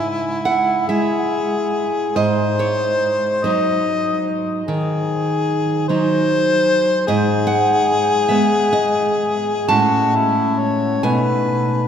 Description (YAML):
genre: romantic duo for harmonica and classical guitar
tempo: 40-51 BPM (dotted quarters)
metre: 12/8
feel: rubato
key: unclear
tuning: A4 = 442 Hz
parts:
  - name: mellow harmonica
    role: melody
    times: 0.0-11.9 s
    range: E4 to D#5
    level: -19 LUFS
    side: left 3 dB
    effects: none
  - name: nylon-string guitar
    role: accompaniment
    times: 0.0-11.9 s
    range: G#2 to A5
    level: -18 LUFS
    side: right 2 dB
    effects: none
room: wet cathedral reverb, RT60 5.5 s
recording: recorded in a church or concert hall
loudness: -15 LUFS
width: side -8 dB against mid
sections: 0.0-11.9 A section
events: none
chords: 0.0 C#m (rootless); 2.2 G#7; 7.1 G#m; 9.7 Amaj7; 11.0 B7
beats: 0.87 | 2.15 3.43 4.66 5.87 | 7.07 8.28 9.69 11.04